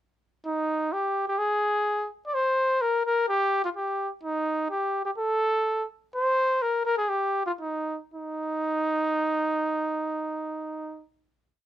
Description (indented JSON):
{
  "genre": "mexican folk",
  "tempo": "111-128 BPM",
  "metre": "2/4",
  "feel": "straight",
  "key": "Eb major",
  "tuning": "A4 = 440 Hz",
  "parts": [
    { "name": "warm trumpet", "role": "solo", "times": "0.5-11.0 s", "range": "Eb4 to D5", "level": "-24 LUFS", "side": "equal", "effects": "none" }
  ],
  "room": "light reverb",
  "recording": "dark, warm production",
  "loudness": "-25 LUFS",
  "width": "side -12 dB against mid",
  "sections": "0.4-8.1 A section; 8.1-10.3 final note",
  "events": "slowing down 6.1-8.1",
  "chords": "none"
}